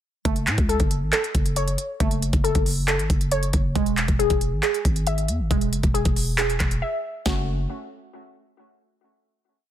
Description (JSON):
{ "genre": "hip hop, trap", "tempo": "137 BPM", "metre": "4/4", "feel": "half-time", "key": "F# minor", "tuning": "A4 = 438 Hz", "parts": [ { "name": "warbly dusty pluck", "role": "arpeggios", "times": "0.3-7.5 s", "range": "G#3 to E5", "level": "-26 LUFS", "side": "equal", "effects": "chorus, phaser, tape echo" }, { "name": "growling 808-style bass", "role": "bass", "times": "0.3-7.7 s", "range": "E1 to A2", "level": "-25 LUFS", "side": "equal", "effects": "none" }, { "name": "trap drum kit", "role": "drums", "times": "0.3-7.4 s", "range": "handclaps, hi-hat, kick drum, snare drum", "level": "-23 LUFS", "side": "equal", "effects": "overdrive" } ], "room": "digital ambience", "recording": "dense, heavily limited modern master", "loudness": "-20 LUFS", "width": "side -11 dB against mid", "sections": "0.3-7.3 verse; 7.3-9.0 final chord", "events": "break 6.8-7.3", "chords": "0.3 F#m; 3.8 E; 7.3 F#m" }